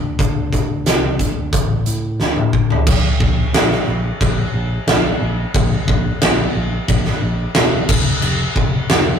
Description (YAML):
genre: hard rock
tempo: 90 BPM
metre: 4/4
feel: straight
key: D minor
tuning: A4 = 441 Hz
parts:
  - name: picked electric bass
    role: bass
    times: 0.0-9.1 s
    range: E1 to A2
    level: -21 LUFS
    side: right 1 dB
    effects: none
  - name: huge arena drum kit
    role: drums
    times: 0.2-9.1 s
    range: crash cymbal, hi-hat, kick drum, snare drum, toms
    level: -15 LUFS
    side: equal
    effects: none
room: light reverb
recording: rough rehearsal-room recording, warm saturation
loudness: -14 LUFS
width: side -7 dB against mid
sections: 0.0-2.9 A section; 2.9-9.2 B section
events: drum fill 2.2-2.9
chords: none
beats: | 0.19 0.86 1.53 2.20 | 2.87 3.54 4.21 4.88 | 5.55 6.22 6.89 7.56 | 8.23 8.90